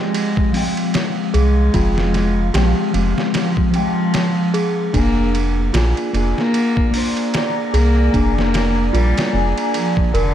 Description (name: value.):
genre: trip hop.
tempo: 75 BPM.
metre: 4/4.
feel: swing 57% on 16ths.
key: F dorian.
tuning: A4 = 440 Hz.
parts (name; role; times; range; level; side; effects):
warm cello; melody; 0.0-10.3 s; D3 to Bb3; -21 LUFS; equal; tape echo.
mellow electric guitar; accompaniment; 0.0-10.1 s; F3 to G5; -22 LUFS; left 2 dB; harmonic tremolo, tape echo.
deep dark ambient pad; sustained chords; 0.0-10.3 s; D5 to Bb5; -28 LUFS; right 1 dB; chorus, built-in reverb.
celesta; arpeggios; 0.0-10.3 s; D4 to Bb4; -26 LUFS; right 1 dB; vintage 12-bit sampler grit, tape echo.
trip hop sampler-style drum kit; drums; 0.1-10.3 s; hi-hat, kick drum, ride cymbal, snare drum; -22 LUFS; equal; overdrive, studio reverb.
soft dub sub bass; bass; 1.3-10.3 s; F1 to C2; -17 LUFS; equal; none.
room: little or no reverb.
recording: dark, warm production.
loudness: -15 LUFS.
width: side -10 dB against mid.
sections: 0.0-10.3 A section.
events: none.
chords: 0.0 Fmadd9; 4.9 Bb7/F.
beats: 0.14 0.94 | 1.74 2.54 3.34 4.14 | 4.94 5.74 6.54 7.34 | 8.14 8.94 9.74.